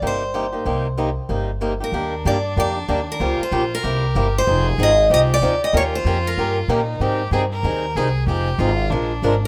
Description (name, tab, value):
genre	acoustic string swing (jazz manouche)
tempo	189 BPM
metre	4/4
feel	swing 60% on 8ths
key	unclear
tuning	A4 = 438 Hz
part	picked swing-style acoustic guitar	accompaniment	0.0-9.3 s	C3 to Bb4	-25 LUFS	equal	none
part	upright bass	bass	0.0-9.5 s	F1 to Bb2	-24 LUFS	equal	none
part	picked steel-string acoustic guitar	melody	0.1-6.6, 9.5 s	Bb4 to Eb5	-24 LUFS	equal	none
part	rich violin	second line	1.9-9.5 s	D4 to Bb4	-30 LUFS	equal	none
room	light reverb, small room ambience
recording	rough home demo mix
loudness	-20 LUFS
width	mono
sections	0.0-1.9 A section; 1.9-9.5 B section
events	none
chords	0.0 Cm7; 1.9 Ebmaj7; 3.2 Gm7b5; 3.8 C7; 4.5 Fm7; 5.7 Eb7; 7.0 Abmaj7; 8.3 Fm7; 8.9 Bb7